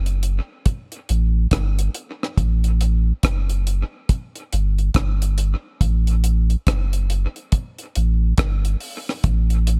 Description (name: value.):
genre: roots reggae.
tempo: 70 BPM.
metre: 4/4.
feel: swing 61% on 16ths.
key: unclear.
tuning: A4 = 444 Hz.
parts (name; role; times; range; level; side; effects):
warm sub bass; bass; 0.0-9.8 s; F#1 to A1; -20 LUFS; equal; none.
deep reggae drum kit; drums; 0.1-9.8 s; hi-hat, kick drum, rim click; -24 LUFS; equal; none.
room: little or no reverb.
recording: none.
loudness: -21 LUFS.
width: mono.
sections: 0.0-9.8 A section.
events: none.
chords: none.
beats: 0.66 1.51 | 2.37 3.23 4.09 4.95 | 5.81 6.66 7.52 8.38 | 9.24.